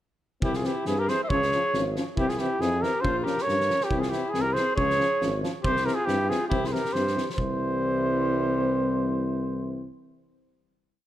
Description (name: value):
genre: balkan folk, Balkan brass band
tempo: 138 BPM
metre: 2/4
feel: swing 53% on 16ths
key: C phrygian dominant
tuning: A4 = 440 Hz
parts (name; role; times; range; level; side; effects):
- mellow trumpet; melody; 0.4-9.9 s; G4 to E5; -27 LUFS; right 1 dB; none
- clear alto saxophone; second line; 0.4-9.9 s; G3 to C5; -34 LUFS; left 4 dB; none
- clear euphonium; accompaniment; 0.4-9.9 s; E3 to F3; -36 LUFS; right 6 dB; none
- mellow French horn; accompaniment; 0.4-9.9 s; C4 to Db4; -32 LUFS; left 3 dB; none
- warm tuba; bass; 0.4-9.9 s; Ab1 to G2; -30 LUFS; equal; none
- loose indie drum kit; percussion; 0.4-7.6 s; kick drum, snare drum; -33 LUFS; equal; none
room: light reverb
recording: none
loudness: -23 LUFS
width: side -13 dB against mid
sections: 0.4-7.4 A section; 7.4-9.1 final chord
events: none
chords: 0.4 C; 1.3 Db; 2.2 C; 3.0 Bbm; 3.9 C; 4.8 Db; 5.6 C